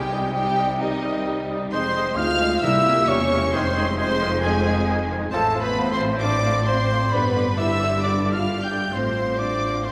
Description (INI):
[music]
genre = classical, dramatic, fast romantic movement for symphony orchestra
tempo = 133 BPM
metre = 4/4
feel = rubato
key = unclear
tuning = A4 = 440 Hz
[part]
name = warm symphonic violin section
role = melody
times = 0.0-9.9 s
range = Eb5 to G6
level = -31 LUFS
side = equal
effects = none
[part]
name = mellow hollow concert flute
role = second line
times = 0.0-9.9 s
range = Eb5 to G6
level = -30 LUFS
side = equal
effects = none
[part]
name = rich chamber violin section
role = second line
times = 0.0-9.9 s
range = Eb4 to G5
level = -32 LUFS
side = equal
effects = none
[part]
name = warm clarinet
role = second line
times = 0.0-9.9 s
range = Eb4 to G5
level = -31 LUFS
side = equal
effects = none
[part]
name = rich studio viola section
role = accompaniment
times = 0.0-9.9 s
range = G3 to G4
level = -33 LUFS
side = equal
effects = none
[part]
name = mellow French horn section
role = sustained chords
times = 0.0-9.9 s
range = Eb3 to G4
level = -31 LUFS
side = equal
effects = none
[part]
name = rich symphonic cello section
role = bass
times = 0.0-9.9 s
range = C2 to C3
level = -31 LUFS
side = equal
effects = none
[part]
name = rich symphonic double bass section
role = bass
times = 0.0-9.9 s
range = E1 to D2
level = -31 LUFS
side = equal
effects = none
[part]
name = timpani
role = percussion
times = 0.0-3.3 s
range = C3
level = -36 LUFS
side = equal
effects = none
[part]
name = warm oboe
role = second line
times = 0.1-9.9 s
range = Ab4 to Eb5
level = -36 LUFS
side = equal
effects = none
[part]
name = warm bassoon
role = accompaniment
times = 0.1-9.9 s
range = D3 to Ab3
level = -34 LUFS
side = equal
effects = none
[sound]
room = wet church reverb, RT60 3.3 s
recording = recorded in a church or concert hall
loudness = -22 LUFS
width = mono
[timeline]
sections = 0.0-9.9 A section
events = none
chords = 0.0 Cm; 1.7 Fm7; 2.6 C7; 3.5 Fm7; 5.3 F/A; 7.1 G; 8.9 F/A